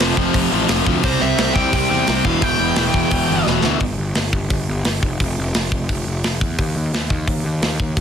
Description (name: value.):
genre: punk rock.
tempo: 173 BPM.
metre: 4/4.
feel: straight.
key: unclear.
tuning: A4 = 439 Hz.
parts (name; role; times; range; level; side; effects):
cranked stack guitar; riff; 0.0-3.6 s; E2 to C4; -23 LUFS; equal; overdrive.
sludgy distorted guitar; riff; 0.0-3.8 s; E2 to C4; -22 LUFS; right 11 dB; overdrive.
tight distorted guitar; riff; 0.0-3.8 s; E2 to C4; -21 LUFS; left 15 dB; distortion.
fuzz picked electric bass; bass; 0.0-8.0 s; E1 to E2; -22 LUFS; equal; overdrive.
tight metal drum kit; drums; 0.0-8.0 s; hi-hat, kick drum, snare drum; -21 LUFS; equal; soft clipping on kick.
dark smooth lead guitar; melody; 1.0-3.5 s; C5 to G5; -22 LUFS; right 2 dB; overdrive, digital delay.
room: light reverb.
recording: dense, heavily limited modern master.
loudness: -16 LUFS.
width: side -8 dB against mid.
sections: 0.0-3.8 A section; 3.8-8.0 B section.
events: drum fill 3.5-3.8.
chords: 0.0 F5; 1.0 C; 2.2 Em; 3.8 N.C..